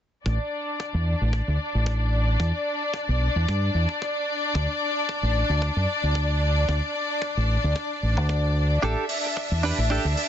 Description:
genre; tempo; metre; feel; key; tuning
nu-disco, nu disco; 112 BPM; 4/4; swing 55% on 16ths; unclear; A4 = 440 Hz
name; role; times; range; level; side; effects
clear symphonic string section; sustained chords; 0.3-10.3 s; D4 to E5; -26 LUFS; left 2 dB; sidechain pumping, low-pass filter
fingered electric bass; bass; 0.3-10.1 s; A1 to G2; -22 LUFS; equal; none
kick drum; drums; 0.3-10.0 s; none; -36 LUFS; equal; high-pass filter on kick, high-pass filter on snare, high-pass filter on room
direct-recorded clean electric guitar; riff; 8.8-10.2 s; D4 to B4; -28 LUFS; right 3 dB; analog chorus, ping-pong delay
hi-hat; drums; 9.1-10.3 s; none; -31 LUFS; right 6 dB; none
room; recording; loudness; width
light reverb, small room ambience; nothing above 7.9 kHz; -22 LUFS; side -10 dB against mid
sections
0.3-10.3 A section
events
filter sweep on fingered electric bass 0.3-10.3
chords
0.3 Asus4; 2.4 N.C.; 8.8 A7sus4

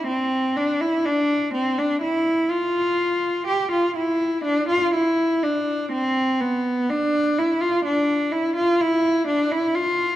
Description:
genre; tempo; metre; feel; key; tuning
classical, baroque-style suite movement for unaccompanied cello; 62 BPM; 4/4; rubato; unclear; A4 = 440 Hz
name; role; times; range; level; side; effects
rich cello; solo; 0.0-10.2 s; B3 to G4; -19 LUFS; equal; none
room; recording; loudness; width
wet recital hall reverb, RT60 1.7 s; dark, warm production; -19 LUFS; side -13 dB against mid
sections
0.0-10.2 A section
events
none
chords
none

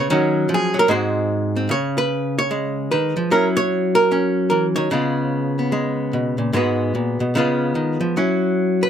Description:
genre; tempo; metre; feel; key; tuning
solo jazz; 149 BPM; 4/4; swing 65% on 8ths; Db mixolydian; A4 = 440 Hz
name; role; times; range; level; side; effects
archtop guitar, miked and amplified; solo; 0.0-8.9 s; Ab2 to Db5; -17 LUFS; equal; none
room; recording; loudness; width
light reverb; close, detailed microphones; -17 LUFS; side -8 dB against mid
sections
0.0-1.7 A section; 1.7-8.9 B section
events
hollow-body jazz guitar solo 0.0-1.7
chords
0.1 Ebm7; 0.9 Ab7; 1.7 Db7(no3); 3.3 Gb7; 4.9 Db7; 6.5 Abm7; 7.3 Db7; 8.2 Gb7(no3)

